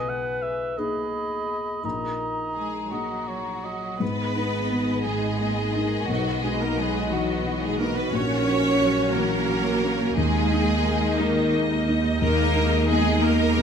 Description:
cinematic; 59 BPM (dotted quarters); 6/8; rubato; G# minor; A4 = 443 Hz
concert flute; second line; 0.0-3.7 s; G#5 to B5; -33 LUFS; left 2 dB
mellow clarinet; second line; 0.0-3.6 s; D#4 to B4; -32 LUFS; left 2 dB
warm cor anglais; second line; 0.0-4.0 s; C#5 to F#5; -32 LUFS; right 5 dB
felt-muted upright piano; accompaniment; 0.0-13.6 s; A#1 to G#4; -29 LUFS; left 2 dB
concert harp; arpeggios; 0.0-13.6 s; G#2 to A#5; -33 LUFS; left 8 dB
clear symphonic violin section; second line; 2.5-13.6 s; D#4 to C#5; -28 LUFS; equal
clear symphonic cello section; bass; 2.6-13.6 s; D#3 to C#4; -28 LUFS; right 3 dB
rich symphonic violin section; melody; 4.0-13.6 s; C#5 to D#5; -33 LUFS; left 1 dB
rich symphonic viola section; accompaniment; 4.0-13.6 s; G#3 to G#4; -32 LUFS; right 3 dB
dark French horn section; sustained chords; 4.0-13.6 s; G#3 to F#4; -30 LUFS; left 4 dB
rich symphonic double bass section; bass; 4.0-13.6 s; G#1 to D#2; -28 LUFS; right 4 dB
light reverb; close, detailed microphones; -21 LUFS; side -7 dB against mid
0.0-4.0 A section; 4.0-13.6 A section
0.0 G#madd9/B; 1.8 D#sus4/A#; 4.0 G#madd9; 6.1 B; 8.1 F#/A#; 10.2 D#sus4; 12.2 G#madd9/D#
0.78 | 1.84 2.92 | 4.01 5.05 | 6.09 7.12 | 8.14 9.16 | 10.18 11.19 | 12.21 13.23

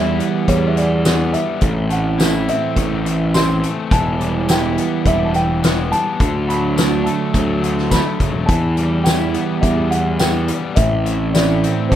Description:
indie rock; 105 BPM; 4/4; straight; A4 = 438 Hz
dark upright piano; melody; 0.0-12.0 s; C5 to C6; -23 LUFS; equal; analog delay
crunchy overdriven guitar; riff; 0.0-12.0 s; A2 to E4; -23 LUFS; left 7 dB
twelve-string electric guitar; riff; 0.0-12.0 s; A2 to E4; -22 LUFS; right 7 dB; analog chorus
fuzz picked electric bass; bass; 0.0-12.0 s; E1 to E2; -20 LUFS; equal; overdrive
loose indie drum kit; drums; 0.2-12.0 s; hi-hat, kick drum, snare drum, tambourine; -19 LUFS; equal
little or no reverb; rough home demo mix; -15 LUFS; side -11 dB against mid
0.0-12.0 A section
0.0 Em; 1.6 Am; 3.9 Em; 6.2 D; 8.5 Em; 10.8 Am
0.48 1.05 | 1.62 2.19 2.76 3.33 | 3.91 4.48 5.05 5.62 | 6.20 6.77 7.34 7.92 | 8.49 9.06 9.63 10.21 | 10.78 11.35 11.92

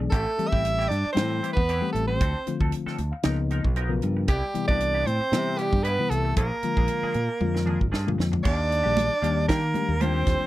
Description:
electric jazz fusion; 115 BPM; 4/4; swing 54% on 16ths; A4 = 442 Hz
mellow reed electric piano; accompaniment; 0.0-10.5 s; C3 to A5; -29 LUFS; left 6 dB
semi-hollow electric guitar; stabs; 0.0-10.4 s; E3 to Bb4; -37 LUFS; right 1 dB; analog chorus
fingered electric bass; bass; 0.0-10.4 s; Ab1 to Eb3; -27 LUFS; equal
edgy soprano saxophone; melody; 0.1-10.5 s; G4 to E5; -27 LUFS; right 1 dB; slapback echo
breathy tenor saxophone; second line; 0.1-10.5 s; G3 to E4; -33 LUFS; right 6 dB
tight funk drum kit; drums; 0.1-10.4 s; crash cymbal, hi-hat, kick drum, snare drum, toms; -27 LUFS; right 1 dB
congas; percussion; 8.4-10.1 s; -30 LUFS; right 4 dB
little or no reverb; dry, close 1970s-style studio recording; -22 LUFS; side -15 dB against mid
0.0-8.4 A section; 8.4-10.5 B section
reed electric piano fill 2.7-4.3; drum fill 7.4-8.4
0.1 Am7; 2.2 Dm7; 3.2 Db13; 4.3 Cmaj7; 6.4 Bb7; 8.4 Ebmaj7
| 0.12 0.64 1.16 1.68 | 2.20 2.72 3.24 3.76 | 4.28 4.80 5.33 5.85 | 6.37 6.89 7.41 7.93 | 8.45 8.97 9.49 10.01

